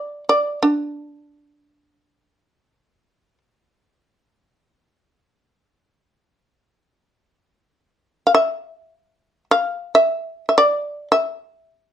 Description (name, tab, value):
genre	japanese traditional, Japanese chamber music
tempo	free time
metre	none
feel	none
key	D hirajoshi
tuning	A4 = 440 Hz
part	shamisen	solo	0.0-3.4, 8.3-11.9 s	D4 to F5	-16 LUFS	equal	none
room	light reverb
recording	dark, warm production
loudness	-17 LUFS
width	side -10 dB against mid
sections	0.0-7.2 A section; 7.2-11.9 A section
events	none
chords	none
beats	free time